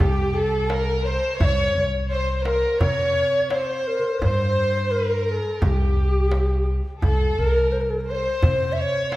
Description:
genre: Turkish makam ensemble.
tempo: 85 BPM.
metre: 4/4.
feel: straight.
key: C makam hicaz.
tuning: A4 = 441 Hz.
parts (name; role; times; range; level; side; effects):
breathy mellow ney; melody; 0.0-9.2 s; G4 to E5; -23 LUFS; equal; none.
warm studio violin section; second line; 0.0-9.2 s; G4 to Db5; -28 LUFS; left 1 dB; none.
upright bass; bass; 0.0-9.2 s; C2 to C3; -24 LUFS; equal; none.
darbuka; percussion; 0.0-9.2 s; none; -25 LUFS; equal; none.
room: wet recital hall reverb, RT60 1.8 s.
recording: heard from further back in the room.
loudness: -19 LUFS.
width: side -17 dB against mid.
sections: 0.0-9.2 A section.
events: none.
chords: none.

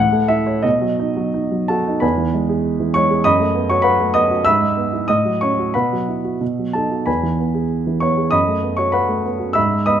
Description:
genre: classical, romantic character piece for solo piano.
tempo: 85-101 BPM.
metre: 2/4.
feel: rubato.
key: E major.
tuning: A4 = 437 Hz.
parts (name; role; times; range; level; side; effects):
warm grand piano; solo; 0.0-10.0 s; E2 to E6; -15 LUFS; right 1 dB; none.
room: light reverb.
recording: close, detailed microphones.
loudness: -16 LUFS.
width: side -9 dB against mid.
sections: 0.0-2.0 A section; 2.0-10.0 B section.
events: none.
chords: 0.0 F#m7/A; 0.6 B; 2.0 E; 3.2 B7/F#; 4.5 E/G#; 5.1 F#m/A; 5.7 Bsus4; 6.4 B; 7.1 E; 8.3 B7/F#.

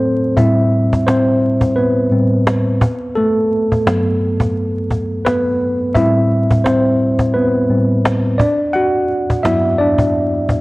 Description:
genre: lo-fi hip hop.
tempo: 86 BPM.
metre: 4/4.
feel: swing 56% on 16ths.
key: A dorian.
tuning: A4 = 440 Hz.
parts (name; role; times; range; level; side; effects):
mellow tine electric piano; accompaniment; 0.0-10.6 s; G2 to F#5; -13 LUFS; equal; medium stereo tremolo, low-pass filter.
cajon; drums; 0.4-10.6 s; none; -18 LUFS; equal; none.
room: moderate plate reverb, RT60 2.3 s.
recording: worn, warbling old tape, cassette tape, vinyl crackle, warbly pitch drift.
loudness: -13 LUFS.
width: side -21 dB against mid.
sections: 0.4-10.6 A section.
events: stop 0.0-0.4; tine electric piano solo 0.4-10.6.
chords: 0.4 Am9; 2.8 Gmaj9; 6.0 Am9; 8.4 Gmaj7.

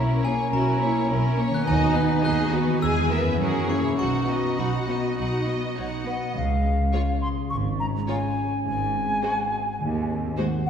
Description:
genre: cinematic, playful, whimsical film cue.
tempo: 104 BPM.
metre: 4/4.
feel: straight.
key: B major, Db major from 6.3 s.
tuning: A4 = 441 Hz.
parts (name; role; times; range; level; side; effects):
glockenspiel with brass mallets; melody; 0.0-5.7 s; G#5 to F#6; -30 LUFS; left 3 dB; none.
rich studio violin section; melody; 0.0-10.5 s; A#4 to G#5; -34 LUFS; left 2 dB; none.
rich studio violin section; second line; 0.0-10.5 s; C#4 to D#5; -34 LUFS; equal; none.
rich studio viola section; accompaniment; 0.0-10.5 s; G#3 to D#4; -30 LUFS; equal; none.
concert harp; arpeggios; 0.0-10.7 s; F#2 to B4; -29 LUFS; left 1 dB; none.
dark studio double bass section; bass; 0.0-10.3 s; Ab1 to F#2; -27 LUFS; right 2 dB; none.
rich studio cello section; bass; 0.0-10.3 s; Db2 to A#4; -30 LUFS; right 2 dB; none.
bright concert flute; second line; 6.1-10.7 s; F5 to Db6; -28 LUFS; left 1 dB; none.
room: wet scoring stage reverb, RT60 2.0 s.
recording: heard from further back in the room.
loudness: -22 LUFS.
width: side -8 dB against mid.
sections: 0.0-6.3 A section; 6.3-10.7 B section.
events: none.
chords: 0.0 A#dim/B; 1.7 B/D#; 2.8 E; 3.4 F#7; 4.0 B; 6.3 Db; 8.7 Ab7.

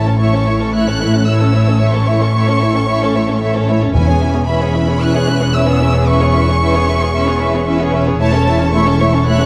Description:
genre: cinematic.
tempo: 113 BPM.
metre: 4/4.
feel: straight.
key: A major.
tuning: A4 = 440 Hz.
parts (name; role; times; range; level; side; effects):
rich studio violin section; melody; 0.0-9.5 s; G#5 to F#6; -23 LUFS; equal; none.
rich symphonic violin section; second line; 0.0-9.5 s; G#4 to E5; -23 LUFS; equal; none.
warm symphonic viola section; accompaniment; 0.0-9.5 s; A3 to E4; -20 LUFS; equal; none.
rich symphonic cello section; bass; 0.0-9.5 s; E2 to A2; -20 LUFS; equal; none.
warm symphonic double bass section; bass; 0.0-9.5 s; E1 to A1; -19 LUFS; equal; none.
timpani; percussion; 0.0-0.4, 3.9-4.7 s; E2 to A2; -21 LUFS; equal; none.
room: moderate scoring stage reverb, RT60 1.8 s.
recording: dark, warm production.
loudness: -14 LUFS.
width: mono.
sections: 0.0-9.5 A section.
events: none.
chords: 0.0 A; 3.9 E6; 8.2 A/E.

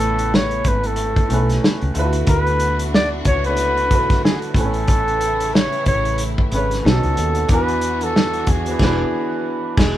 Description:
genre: R&B, neo-soul.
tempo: 92 BPM.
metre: 4/4.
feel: swing 59% on 16ths.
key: A major.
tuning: A4 = 440 Hz.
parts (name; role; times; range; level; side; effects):
breathy flugelhorn; melody; 0.0-9.8 s; G#4 to D5; -21 LUFS; equal; none.
clear upright piano; accompaniment; 0.0-10.0 s; A2 to G#5; -24 LUFS; right 1 dB; none.
warm studio string section; sustained chords; 0.0-10.0 s; C#3 to F#4; -30 LUFS; equal; none.
woody fretless electric bass; bass; 0.0-10.0 s; E1 to E2; -22 LUFS; equal; none.
warm soul drum kit; drums; 0.2-10.0 s; crash cymbal, hi-hat, kick drum, snare drum; -18 LUFS; equal; none.
room: moderate studio ambience, RT60 0.5 s.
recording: band playing live in one room.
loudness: -16 LUFS.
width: side -12 dB against mid.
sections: 0.0-10.0 A section.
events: band accent 8.8-10.0.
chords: 0.0 Amaj7; 1.9 D6; 4.6 Amaj7; 6.8 B7; 7.5 E9.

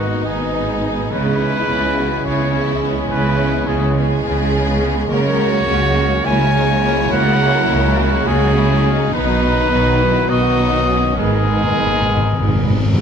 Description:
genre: cinematic.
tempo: 208 BPM (eighths).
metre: 7/8.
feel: straight.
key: unclear.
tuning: A4 = 441 Hz.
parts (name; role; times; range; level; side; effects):
warm symphonic violin section; melody; 0.0-12.9 s; A#3 to C#5; -26 LUFS; left 6 dB; none.
warm symphonic violin section; second line; 0.0-12.9 s; C#4 to A#4; -25 LUFS; left 4 dB; none.
rich symphonic viola section; accompaniment; 0.0-13.0 s; D#3 to D#4; -24 LUFS; right 1 dB; none.
dark French horn section; sustained chords; 0.0-12.9 s; A#3 to B4; -26 LUFS; left 5 dB; none.
mellow trombone section; sustained chords; 0.0-12.9 s; B2 to G#3; -25 LUFS; right 5 dB; none.
warm woodwind section; sustained chords; 0.0-12.9 s; G#3 to A#5; -29 LUFS; left 1 dB; none.
mellow trumpet; stabs; 0.0-12.9 s; F#4 to G#5; -21 LUFS; equal; none.
rich symphonic cello section; bass; 0.0-13.0 s; G#2 to C#3; -22 LUFS; right 2 dB; none.
rich symphonic double bass section; bass; 0.0-13.0 s; G#1 to C#2; -20 LUFS; right 2 dB; none.
timpani; percussion; 11.2-13.0 s; G#2; -19 LUFS; left 2 dB; none.
reverse cymbal; sound effects; 12.8-13.0 s; none; -42 LUFS; left 1 dB; none.
room: moderate scoring stage reverb, RT60 1.9 s.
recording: none.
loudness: -14 LUFS.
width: side -7 dB against mid.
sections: 0.0-13.0 A section.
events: timpani fill 11.2-13.0.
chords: 0.0 G#madd9; 1.1 C#m7; 5.1 F#add9/C#; 9.1 B; 11.2 G#madd9.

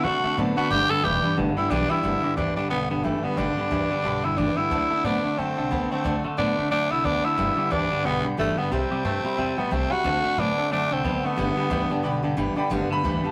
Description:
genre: rockabilly.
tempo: 180 BPM.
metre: 4/4.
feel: swing 59% on 8ths.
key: G major.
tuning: A4 = 440 Hz.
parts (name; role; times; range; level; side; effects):
growling tenor saxophone; melody; 0.0-12.2 s; A3 to A4; -27 LUFS; equal; none.
clear upright piano; accompaniment; 0.0-13.3 s; D3 to D6; -36 LUFS; equal; none.
picked steel-string acoustic guitar; accompaniment; 0.0-13.3 s; G2 to A4; -35 LUFS; equal; none.
twangy electric guitar; riff; 0.0-13.3 s; G2 to B3; -30 LUFS; equal; spring reverb.
upright bass; bass; 0.0-13.3 s; E1 to C3; -33 LUFS; equal; none.
room: moderate booth ambience, RT60 0.2 s.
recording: rough rehearsal-room recording, warm saturation.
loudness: -24 LUFS.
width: mono.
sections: 0.0-2.0 A section; 2.0-12.7 B section.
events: none.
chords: 0.0 D7; 0.7 G; 4.7 D7; 7.4 G; 8.7 C; 10.0 D7; 11.4 G.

